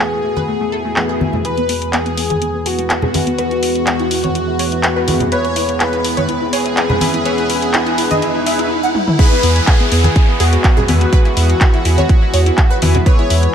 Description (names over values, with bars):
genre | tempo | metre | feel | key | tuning
progressive house | 124 BPM | 4/4 | straight | E major | A4 = 441 Hz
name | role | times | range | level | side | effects
soft supersaw | melody | 0.0-13.5 s | F#4 to C#5 | -20 LUFS | equal | ping-pong delay
evolving wavetable pad | sustained chords | 0.0-13.5 s | E2 to B4 | -26 LUFS | equal | chorus, built-in reverb, phaser, sidechain pumping
wide unison pluck | arpeggios | 0.0-13.4 s | A3 to F#5 | -22 LUFS | equal | lush chorus, sidechain pumping, tape echo
chorused polysynth | stabs | 0.0-13.5 s | E3 to B4 | -22 LUFS | left 2 dB | cassette tape, sidechain pumping, tape echo
congas | percussion | 0.4-13.0 s | none | -21 LUFS | equal | sidechain pumping on perc
swell, riser and downlifter | sound effects | 0.6-13.1 s | none | -24 LUFS | equal | none
house drum kit | drums | 1.0-13.5 s | handclaps, hi-hat, toms | -20 LUFS | equal | none
electronic kick drum | drums | 9.2-13.2 s | none | -11 LUFS | right 1 dB | none
round analog bass | bass | 9.4-13.5 s | E2 | -13 LUFS | right 1 dB | sidechain pumping
room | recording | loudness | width
light reverb, digital ambience | none | -12 LUFS | side -8 dB against mid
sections
0.0-1.4 A section; 1.4-9.2 B section; 9.2-13.5 C section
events
swell 0.6-1.4, 8.2-9.2; build-up 1.4-9.2; riser 1.4-9.2; filter sweep on synth pluck 1.4-9.2; filter sweep on analog polysynth 1.4-9.2; filter sweep on ambient pad 1.4-9.2; drum fill 8.9; drop 9.2-13.5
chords
0.0 Asus2/E; 1.4 E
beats
0.00 0.48 0.96 | 1.45 1.93 2.42 2.90 | 3.38 3.87 4.35 4.84 | 5.32 5.80 6.29 6.77 | 7.25 7.74 8.22 8.71 | 9.19 9.67 10.16 10.64 | 11.13 11.61 12.09 12.58 | 13.06 13.54